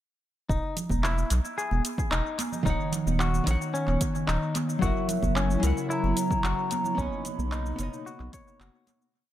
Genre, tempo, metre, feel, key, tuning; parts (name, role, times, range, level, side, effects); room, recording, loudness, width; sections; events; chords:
sunset chillout; 111 BPM; 4/4; straight; A4 = 440 Hz
clean electric guitar; arpeggios; 0.5-8.8 s; C#4 to C#5; -34 LUFS; left 3 dB; dub echo
round analog bass; bass; 0.5-8.7 s; D#1 to C#2; -27 LUFS; equal; tube saturation
deep house drum kit; drums; 0.5-9.1 s; handclaps, hi-hat, shaker; -34 LUFS; right 1 dB; overdrive, tape echo
electronic kick drum; drums; 0.5-8.4 s; -31 LUFS; equal; overdrive
congas; percussion; 0.8-9.0 s; -36 LUFS; right 4 dB; tape echo
hollow-body jazz guitar; accompaniment; 2.6-9.1 s; D#3 to F#5; -30 LUFS; moving between left 5 dB and right 5 dB; auto-pan, dub echo
mellow hollow baroque flute; melody; 4.8-8.6 s; E5 to B5; -33 LUFS; equal; dub echo
airy breathy pad; sustained chords; 4.8-9.1 s; B2 to C#5; -35 LUFS; left 1 dB; chorus
light reverb; echo-heavy mix; -25 LUFS; side -12 dB against mid
0.5-9.1 groove
fade-out 6.3-9.1
0.5 Emaj7(no3); 2.7 D#m7; 4.8 F#7; 7.0 Bmaj9